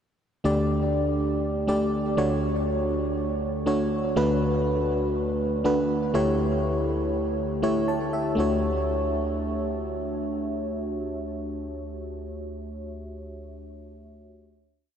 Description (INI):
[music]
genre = pop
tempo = 121 BPM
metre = 4/4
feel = straight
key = D major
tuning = A4 = 438 Hz
[part]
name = FM electric piano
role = solo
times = 0.4-14.9 s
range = D2 to A5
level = -24 LUFS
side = equal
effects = chorus, tape echo
[sound]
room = wet huge ambient reverb, RT60 8.8 s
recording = dreamy mix soaked in reverb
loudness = -23 LUFS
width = side -8 dB against mid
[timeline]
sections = 0.4-8.4 pre-chorus; 8.4-12.3 final chord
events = none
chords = 0.4 Gsus2/D; 2.2 Dmaj7; 4.2 Bm7/D; 6.1 A7/D; 8.4 Dmaj7